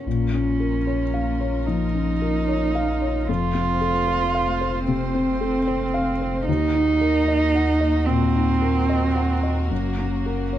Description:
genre	neoclassical piano and strings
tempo	75 BPM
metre	4/4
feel	rubato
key	Bb harmonic minor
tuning	A4 = 439 Hz
part	dark cello	second line	0.0-10.6 s	Bb3 to F4	-23 LUFS	right 4 dB	none
part	felt-muted upright piano	accompaniment	0.0-10.6 s	Eb2 to Gb5	-24 LUFS	left 5 dB	none
part	warm studio string section	sustained chords	0.1-10.6 s	A3 to C5	-34 LUFS	left 1 dB	none
part	warm sub bass	bass	0.1-10.6 s	F1 to Eb2	-26 LUFS	equal	none
room	light reverb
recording	dark, warm production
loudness	-19 LUFS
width	side -12 dB against mid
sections	0.1-10.6 A section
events	none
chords	0.1 Bbm; 3.3 F; 6.5 Ebm; 9.7 Gb

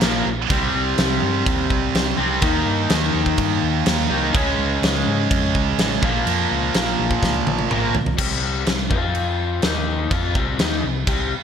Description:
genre	hard rock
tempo	125 BPM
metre	4/4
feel	straight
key	C phrygian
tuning	A4 = 440 Hz
part	heavy high-gain guitar	riff	0.0-7.9 s	Bb2 to Eb4	-23 LUFS	right 11 dB	distortion
part	overdriven semi-hollow guitar	riff	0.0-11.3 s	Bb2 to F4	-23 LUFS	left 7 dB	lush chorus
part	overdriven fingered electric bass	bass	0.0-11.3 s	A1 to Ab2	-26 LUFS	equal	none
part	big rock drum kit	drums	0.0-11.2 s	crash cymbal, kick drum, snare drum, toms	-22 LUFS	equal	gated reverb
room	moderate lush hall reverb, RT60 1.5 s, studio reverb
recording	bright 1980s-style digital production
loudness	-17 LUFS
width	side -8 dB against mid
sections	0.0-8.2 A section; 8.2-11.4 B section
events	drum fill 7.2-8.2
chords	0.0 Bb5; 0.5 C5; 2.4 Eb; 4.3 Db5; 6.0 Bbm; 8.2 C5; 8.9 F5; 9.6 Eb5; 10.1 Cm

